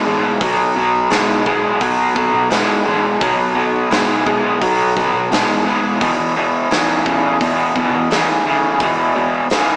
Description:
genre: blues rock power trio and southern rock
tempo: 86 BPM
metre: 4/4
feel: straight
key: unclear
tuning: A4 = 441 Hz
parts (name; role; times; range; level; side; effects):
- raw garage guitar; riff; 0.0-9.8 s; E2 to G#3; -17 LUFS; equal; overdrive, harmonic tremolo
- fuzz fingered electric bass; bass; 0.1-9.8 s; E1 to E3; -29 LUFS; equal; overdrive
- big rock drum kit; drums; 0.4-9.7 s; hi-hat, kick drum, snare drum; -24 LUFS; equal; none
room: light reverb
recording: band playing live in one room, small speaker sound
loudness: -16 LUFS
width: mono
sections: 0.0-9.8 A section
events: none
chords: 0.0 B5; 6.0 E5

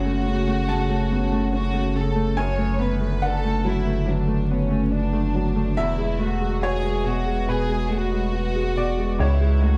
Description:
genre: neoclassical piano and strings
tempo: 71 BPM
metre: 4/4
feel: rubato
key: unclear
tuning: A4 = 440 Hz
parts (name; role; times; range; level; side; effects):
- warm chamber violin section; melody; 0.0-9.8 s; C#4 to C#5; -31 LUFS; equal; none
- clear upright piano; accompaniment; 0.0-9.8 s; C#2 to A5; -27 LUFS; equal; none
- warbly tape-like pad; sustained chords; 0.0-9.8 s; D3 to C#5; -33 LUFS; equal; chorus, built-in reverb
- warm sub bass; bass; 0.0-9.8 s; E1 to C#2; -26 LUFS; equal; none
room: light reverb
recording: close, detailed microphones, vinyl crackle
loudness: -23 LUFS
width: mono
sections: 0.0-9.8 A section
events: none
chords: 0.0 F#m; 2.4 Bm7/F#; 5.8 Eadd9; 9.2 C#m

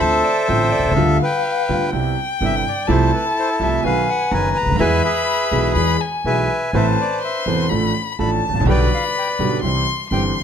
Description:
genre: tango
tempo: 125 BPM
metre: 4/4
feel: rubato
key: unclear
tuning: A4 = 440 Hz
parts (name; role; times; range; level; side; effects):
- bandoneon; melody; 0.0-10.4 s; E4 to C6; -20 LUFS; left 1 dB; none
- bright clarinet; second line; 0.0-1.1 s; C5 to D5; -27 LUFS; right 4 dB; none
- warm violin; second line; 0.0-10.4 s; F5 to C6; -22 LUFS; left 5 dB; none
- clear concert grand piano; accompaniment; 0.0-10.4 s; E1 to A4; -20 LUFS; right 2 dB; none
- upright bass; bass; 0.0-10.4 s; E1 to E2; -22 LUFS; equal; none
room: light reverb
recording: none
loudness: -16 LUFS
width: side -8 dB against mid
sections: 0.0-10.4 A section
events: none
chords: 0.0 Dm7; 1.0 G7/D; 1.9 Cmaj7; 2.9 Fmaj7/C; 3.8 B; 4.8 E; 6.7 Amadd9; 7.7 Dm/A; 8.7 G/B; 9.6 C

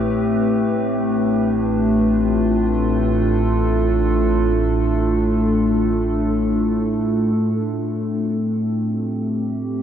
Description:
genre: ambient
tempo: free time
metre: none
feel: none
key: unclear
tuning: A4 = 439 Hz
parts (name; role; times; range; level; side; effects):
- warbly tape-like pad; sustained chords; 0.0-9.8 s; A2 to B4; -18 LUFS; equal; chorus, built-in reverb
- round analog bass; bass; 0.0-7.3 s; A1; -24 LUFS; right 1 dB; none
room: wet huge ambient reverb, RT60 7.9 s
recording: in a vast, echoing space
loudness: -17 LUFS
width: side -9 dB against mid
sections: 0.0-7.4 A section; 7.4-9.8 B section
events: none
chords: 0.0 Am7; 0.7 Dm/A; 7.4 Am7

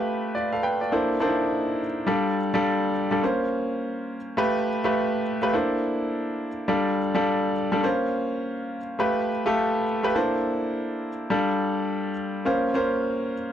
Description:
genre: R&B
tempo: 104 BPM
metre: 4/4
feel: swing 62% on 16ths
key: F major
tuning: A4 = 440 Hz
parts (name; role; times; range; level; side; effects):
- clear grand piano; solo; 0.0-13.5 s; G3 to G5; -23 LUFS; equal; none
room: light reverb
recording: dry, close 1970s-style studio recording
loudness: -23 LUFS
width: side -10 dB against mid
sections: 0.0-2.1 A section; 2.1-11.3 B section; 11.3-13.5 C section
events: none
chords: 0.0 G9; 0.9 C13; 2.1 F69; 3.2 Bbmadd9; 4.4 G9; 5.5 C13; 6.7 F69; 7.8 Bbmadd9; 9.0 G9; 10.1 C13; 11.3 F69; 12.5 Bbmadd9

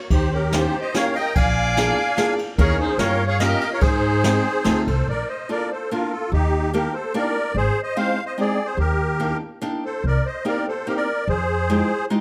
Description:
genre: musette waltz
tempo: 146 BPM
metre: 3/4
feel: rubato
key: Bb major from 5.1 s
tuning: A4 = 440 Hz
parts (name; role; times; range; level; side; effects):
- musette accordion; melody; 0.1-12.1 s; Eb4 to Ab5; -25 LUFS; equal; none
- rich violin; second line; 0.1-4.8 s; Db4 to D5; -30 LUFS; equal; none
- upright bass; bass; 0.1-11.8 s; Ab1 to Ab2; -25 LUFS; equal; none
- jazz brush drum kit; drums; 0.1-5.0 s; kick drum, ride cymbal, snare drum; -27 LUFS; equal; none
- picked old ladder-braced acoustic guitar; accompaniment; 0.5-12.2 s; Ab3 to A4; -27 LUFS; equal; none
room: light reverb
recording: none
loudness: -21 LUFS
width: mono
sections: 0.0-5.1 A section; 5.1-12.2 B section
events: none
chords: 0.1 Eb7; 1.4 Bb7; 2.6 Eb7sus4; 3.0 Gm7b5; 3.8 Abmaj7; 4.7 F7; 5.1 Bbmaj7; 6.3 Ebmaj7; 7.5 Abmaj7; 8.8 Ebmaj7; 10.0 Cm7; 11.3 Fm9

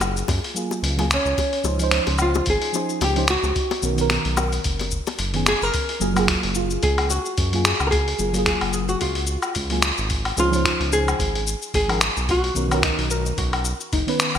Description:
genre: sunset chillout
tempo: 110 BPM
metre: 4/4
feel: swing 56% on 16ths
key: F# major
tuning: A4 = 442 Hz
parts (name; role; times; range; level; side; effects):
- mellow FM electric piano; accompaniment; 0.0-14.4 s; D#3 to B#4; -27 LUFS; moving between left 5 dB and right 4 dB; chorus, phaser, auto-pan, digital delay
- round analog bass; bass; 0.0-14.4 s; F#1 to F#2; -25 LUFS; equal; none
- dusty soul sampler-style drum kit; drums; 0.0-14.4 s; finger snaps, hi-hat, shaker, woodblock; -23 LUFS; left 1 dB; gated reverb
- bongos; percussion; 0.0-5.6 s; none; -31 LUFS; left 8 dB; none
- electronic kick drum; drums; 0.3-14.0 s; none; -27 LUFS; equal; none
- nylon-string guitar; melody; 1.1-12.8 s; C#4 to A#4; -25 LUFS; equal; vintage 12-bit sampler grit, digital delay
- soft round pluck; arpeggios; 6.0-14.1 s; D#4 to A#4; -32 LUFS; equal; wide subtle chorus, digital delay
room: moderate lush hall reverb, RT60 1.8 s, digital ambience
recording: bright 1980s-style digital production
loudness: -19 LUFS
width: side -9 dB against mid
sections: 0.0-5.7 A section; 5.7-14.4 B section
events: filter sweep on FM electric piano 0.0-5.7; kick drops out 5.2-5.7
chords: 0.0 F#maj9; 1.1 C#maj9; 3.6 Bmaj9; 5.7 F#maj9; 9.8 C#maj9; 12.3 Bmaj9

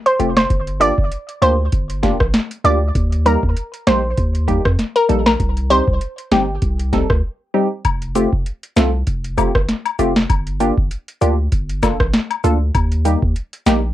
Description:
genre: dancehall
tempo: 98 BPM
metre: 4/4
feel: swing 56% on 16ths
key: G minor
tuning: A4 = 441 Hz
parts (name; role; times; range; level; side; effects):
- impact; sound effects; 0.2-0.5 s; none; barely audible; none; none
- analog pluck; melody; 0.1-6.4 s; G4 to D5; -18 LUFS; equal; chorus, cassette tape, analog delay
- booming analog drum machine; drums; 0.1-13.8 s; hi-hat, kick drum, rim click, snare drum; -19 LUFS; equal; overdrive, cassette tape
- wavetable chord stab; accompaniment; 0.2-13.8 s; G3 to A4; -18 LUFS; equal; cassette tape
- punchy sub bass; bass; 0.2-13.9 s; F1 to F2; -19 LUFS; equal; none
- woodblock and cabasa; percussion; 7.8-13.8 s; none; -22 LUFS; left 10 dB; none
room: light reverb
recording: home recording on cassette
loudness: -15 LUFS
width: side -13 dB against mid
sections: 0.0-13.9 A section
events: impact 0.0-0.5; break 7.2-7.8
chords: 0.0 Fadd9; 0.5 Gm7; 3.0 Eb; 5.4 Cm; 7.8 Fadd9; 10.3 Gm7; 12.7 Eb

